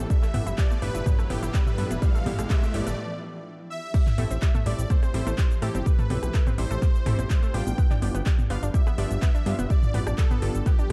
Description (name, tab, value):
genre	progressive house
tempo	125 BPM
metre	4/4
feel	straight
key	A minor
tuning	A4 = 440 Hz
part	soft supersaw	melody	0.0-10.9 s	G4 to G5	-38 LUFS	equal	delay
part	shimmering ambient pad	sustained chords	0.0-10.9 s	E3 to G4	-42 LUFS	equal	none
part	unison pluck	stabs	0.0-10.9 s	G2 to A5	-37 LUFS	equal	sidechain pumping, dub echo
part	plucky analog bass	bass	0.0-10.9 s	F1 to A2	-30 LUFS	equal	sidechain pumping
part	riser	sound effects	0.0-3.0 s	none	-41 LUFS	equal	none
part	analog pluck	arpeggios	0.1-10.9 s	G3 to E4	-39 LUFS	equal	chorus, sidechain pumping, dub echo
part	electronic kick drum	drums	0.1-10.8 s	none	-24 LUFS	equal	none
part	house drum kit	drums	0.1-10.9 s	crash cymbal, handclaps, hi-hat, rim click, shaker	-41 LUFS	equal	high-pass filter on hats, high-pass filter on perc, high-pass filter on snare, high-pass filter on cymbals
part	punchy analog drum machine	percussion	0.3-10.9 s	congas, rim click, toms	-34 LUFS	equal	sidechain pumping on snare, sidechain pumping on perc, sidechain pumping on toms
room	little or no reverb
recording	dark, warm production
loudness	-24 LUFS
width	mono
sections	0.0-3.9 A section; 3.9-10.9 B section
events	build-up 0.0-3.9; riser 0.0-3.0; filter sweep on synth pluck 0.0-3.9; break 3.0-3.9; drop 3.9-10.9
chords	0.1 G7; 3.9 Am7; 7.8 G7